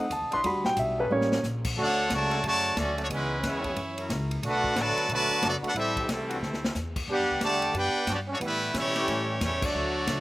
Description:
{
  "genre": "jazz, big band swing",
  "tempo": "181 BPM",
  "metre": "4/4",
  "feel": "swing 64% on 8ths",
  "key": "D major",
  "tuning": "A4 = 438 Hz",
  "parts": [
    { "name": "warm concert grand piano", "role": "accompaniment", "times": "0.0-1.4 s", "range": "G3 to C6", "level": "-25 LUFS", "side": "equal", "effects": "slapback echo" },
    { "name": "upright bass", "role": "bass", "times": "0.1-10.2 s", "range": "F#1 to B2", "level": "-35 LUFS", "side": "equal", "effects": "none" },
    { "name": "swinging big-band drum kit", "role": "drums", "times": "0.1-10.2 s", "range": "crash cymbal, hi-hat, kick drum, ride cymbal, snare drum", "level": "-34 LUFS", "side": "left 1 dB", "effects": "none" },
    { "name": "mellow trombone section", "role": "sustained chords", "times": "0.3-10.2 s", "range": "D3 to B4", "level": "-35 LUFS", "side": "left 2 dB", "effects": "none" },
    { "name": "brilliant trumpet section", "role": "melody", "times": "1.8-10.2 s", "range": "G3 to A5", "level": "-27 LUFS", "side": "equal", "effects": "none" },
    { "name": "clear trombone section", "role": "second line", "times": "1.8-10.2 s", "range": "C3 to G4", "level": "-32 LUFS", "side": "right 2 dB", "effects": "none" }
  ],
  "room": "little or no reverb",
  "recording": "recorded outdoors, with no room sound",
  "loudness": "-25 LUFS",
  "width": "side -17 dB against mid",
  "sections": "0.0-1.8 A section; 1.8-10.2 B section",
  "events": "grand piano solo 0.0-1.8; drum fill 1.1-1.4, 6.4-6.8; band accent 9.6",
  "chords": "0.4 Em7; 1.1 A7b9; 1.8 Dmaj7; 3.1 C#m7; 3.8 F#7; 4.4 Bm7; 5.8 Am7; 6.4 Dsus2; 7.1 Gmaj7; 8.4 A7"
}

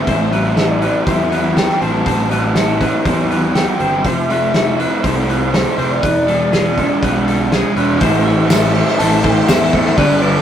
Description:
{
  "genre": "rock, shoegaze and dream pop",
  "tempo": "121 BPM",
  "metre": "4/4",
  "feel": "straight",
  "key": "A minor",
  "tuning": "A4 = 440 Hz",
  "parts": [
    { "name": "pure sine lead", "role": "melody", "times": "0.0-10.4 s", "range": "B4 to A5", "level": "-21 LUFS", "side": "left 2 dB", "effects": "chorus" },
    { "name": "twangy electric guitar", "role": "arpeggios", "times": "0.0-10.4 s", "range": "G4 to E5", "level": "-25 LUFS", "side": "left 2 dB", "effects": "digital delay" },
    { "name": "raw garage guitar", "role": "riff", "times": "0.0-10.4 s", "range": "G2 to F4", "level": "-17 LUFS", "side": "right 3 dB", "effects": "overdrive" },
    { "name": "thick fuzz guitar", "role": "riff", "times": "0.0-10.4 s", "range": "E2 to E4", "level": "-23 LUFS", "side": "left 5 dB", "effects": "distortion" },
    { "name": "fuzz picked electric bass", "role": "bass", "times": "0.1-10.4 s", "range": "E1 to E2", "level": "-19 LUFS", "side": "equal", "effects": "overdrive" },
    { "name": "loose indie drum kit", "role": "drums", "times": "0.1-10.1 s", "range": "hi-hat, kick drum, snare drum", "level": "-20 LUFS", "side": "equal", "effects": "none" },
    { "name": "soft additive organ-like pad", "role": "sustained chords", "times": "8.4-10.4 s", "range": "A4 to D6", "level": "-24 LUFS", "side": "left 2 dB", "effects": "ensemble chorus, built-in reverb" },
    { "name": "tambourine", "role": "percussion", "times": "8.5-9.6 s", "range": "none", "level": "-32 LUFS", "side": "left 6 dB", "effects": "none" }
  ],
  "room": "moderate studio reverb, RT60 0.7 s",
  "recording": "rough rehearsal-room recording, tube saturation",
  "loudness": "-12 LUFS",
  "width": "side -9 dB against mid",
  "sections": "0.0-8.0 A section; 8.0-10.4 B section",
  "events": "none",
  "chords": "0.1 Am7; 4.0 Fmaj7; 6.0 E7b9; 8.0 Am7"
}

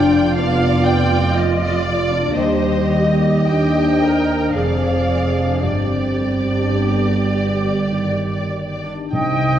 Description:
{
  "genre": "classical",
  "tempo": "46-62 BPM",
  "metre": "3/4",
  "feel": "rubato",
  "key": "unclear",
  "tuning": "A4 = 442 Hz",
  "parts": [
    { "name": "warm symphonic violin section", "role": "melody", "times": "0.0-9.6 s", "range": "D5 to G5", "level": "-25 LUFS", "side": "equal", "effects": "none" },
    { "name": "warm symphonic violin section", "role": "second line", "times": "0.0-9.6 s", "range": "C5 to Eb5", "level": "-25 LUFS", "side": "left 1 dB", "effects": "none" },
    { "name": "warm symphonic viola section", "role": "accompaniment", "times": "0.0-9.6 s", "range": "F4 to Eb5", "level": "-24 LUFS", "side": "right 3 dB", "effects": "none" },
    { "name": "dark French horn section", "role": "sustained chords", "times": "0.0-9.6 s", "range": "Eb3 to Eb4", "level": "-21 LUFS", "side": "left 2 dB", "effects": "none" },
    { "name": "concert harp", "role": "arpeggios", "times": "0.0-9.6 s", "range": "F2 to G5", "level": "-25 LUFS", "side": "left 5 dB", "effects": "none" },
    { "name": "dark symphonic cello section", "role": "bass", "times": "0.0-9.6 s", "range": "Eb2 to C3", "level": "-24 LUFS", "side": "right 3 dB", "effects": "none" },
    { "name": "warm symphonic double bass section", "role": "bass", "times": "0.0-9.6 s", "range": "F1 to Eb2", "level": "-23 LUFS", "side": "right 4 dB", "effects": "none" },
    { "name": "silver concert flute", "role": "second line", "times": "9.1-9.6 s", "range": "G5", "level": "-24 LUFS", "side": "right 2 dB", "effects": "none" },
    { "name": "warm oboe", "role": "second line", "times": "9.1-9.6 s", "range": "Eb5", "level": "-22 LUFS", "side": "right 2 dB", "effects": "none" },
    { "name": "timpani", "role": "percussion", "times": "9.1-9.6 s", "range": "C3", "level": "-24 LUFS", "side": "right 2 dB", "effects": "none" }
  ],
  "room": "wet scoring stage reverb, RT60 1.7 s",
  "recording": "worn, warbling old tape, cassette tape, warbly pitch drift",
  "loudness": "-15 LUFS",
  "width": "side -10 dB against mid",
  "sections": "0.0-9.1 A section",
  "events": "none",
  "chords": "0.0 G7/F; 2.4 Cm/Eb; 4.6 Ddim/F; 5.6 G"
}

